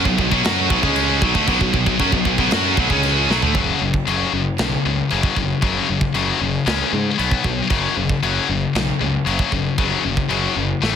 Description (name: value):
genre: heavy metal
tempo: 116 BPM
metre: 4/4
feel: straight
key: F# minor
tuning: A4 = 440 Hz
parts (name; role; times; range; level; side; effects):
- heavy high-gain guitar; riff; 0.0-11.0 s; F#2 to F#4; -19 LUFS; left 7 dB; distortion
- heavy high-gain guitar; riff; 0.0-3.5 s; B2 to F#4; -21 LUFS; right 19 dB; distortion
- fuzz picked electric bass; bass; 0.0-11.0 s; F#1 to G#2; -24 LUFS; right 2 dB; overdrive
- tight metal drum kit; drums; 0.1-10.9 s; china cymbal, crash cymbal, kick drum, snare drum, toms; -23 LUFS; right 2 dB; none
room: light reverb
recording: dense, heavily limited modern master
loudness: -16 LUFS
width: side -8 dB against mid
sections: 0.0-3.5 A section; 3.5-11.0 B section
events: drum fill 3.3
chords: 0.0 B5; 3.5 F#5; 6.7 C#5; 7.2 B5; 7.7 F#5